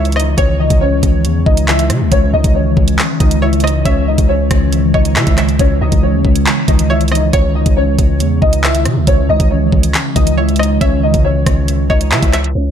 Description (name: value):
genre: hip hop, drill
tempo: 138 BPM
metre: 4/4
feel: half-time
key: C# minor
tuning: A4 = 441 Hz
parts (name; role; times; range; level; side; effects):
- dark grand piano; melody; 0.0-12.7 s; C#4 to E5; -18 LUFS; left 2 dB; analog chorus, diffuse ambient delay
- string-like resonator pluck; second line; 0.0-12.5 s; C#5 to E5; -24 LUFS; right 2 dB; chorus, diffuse ambient delay
- glassy FM pad; sustained chords; 0.0-12.5 s; C#3 to G#3; -18 LUFS; right 1 dB; ensemble chorus, built-in reverb
- long sustained 808-style bass; bass; 0.0-12.7 s; C#2 to C#3; -15 LUFS; equal; none
- drill drum kit; drums; 0.1-12.5 s; handclaps, hi-hat, kick drum, rim click; -15 LUFS; equal; none
room: light reverb, digital ambience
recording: low-pass filter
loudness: -10 LUFS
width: side -8 dB against mid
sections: 0.0-12.6 A section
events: none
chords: 0.0 C#madd9